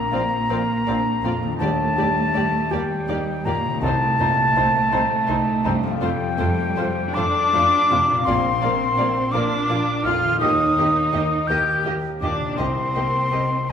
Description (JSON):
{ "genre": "cinematic, emotional film score for orchestra", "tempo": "55 BPM (dotted quarters)", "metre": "6/8", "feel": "rubato", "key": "Bb major", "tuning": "A4 = 440 Hz", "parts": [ { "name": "concert flute", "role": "second line", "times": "0.0-13.7 s", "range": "G5 to G6", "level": "-21 LUFS", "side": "left 1 dB", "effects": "none" }, { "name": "warm grand piano", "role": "accompaniment", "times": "0.0-13.7 s", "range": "Bb1 to Eb5", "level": "-26 LUFS", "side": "equal", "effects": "none" }, { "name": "concert harp", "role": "arpeggios", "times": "0.0-13.7 s", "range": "F2 to D5", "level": "-30 LUFS", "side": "left 5 dB", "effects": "none" }, { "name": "muted symphonic cello section", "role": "bass", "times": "0.0-13.7 s", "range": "G3 to G4", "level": "-26 LUFS", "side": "right 2 dB", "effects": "none" }, { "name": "muted symphonic violin section", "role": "melody", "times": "0.1-13.7 s", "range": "C5 to Eb5", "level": "-36 LUFS", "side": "left 1 dB", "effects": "none" }, { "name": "muted symphonic violin section", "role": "second line", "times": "0.1-13.4 s", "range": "Eb4 to G4", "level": "-33 LUFS", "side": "equal", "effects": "none" }, { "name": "muted symphonic viola section", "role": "accompaniment", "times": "0.1-13.7 s", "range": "G3 to C4", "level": "-33 LUFS", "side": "left 1 dB", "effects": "none" }, { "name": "muted symphonic double bass section", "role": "bass", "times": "0.1-13.7 s", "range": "Bb1 to F2", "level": "-31 LUFS", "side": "right 3 dB", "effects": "none" } ], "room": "wet scoring stage reverb, RT60 1.6 s", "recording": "minimal, uncompressed stereo recording", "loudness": "-18 LUFS", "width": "side -8 dB against mid", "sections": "0.0-13.7 A section", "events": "none", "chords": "0.0 Bbadd9; 1.6 Ebmaj7; 3.8 Cm7; 6.0 F; 8.3 Bbadd9; 10.4 Ebmaj7; 12.6 Cm7" }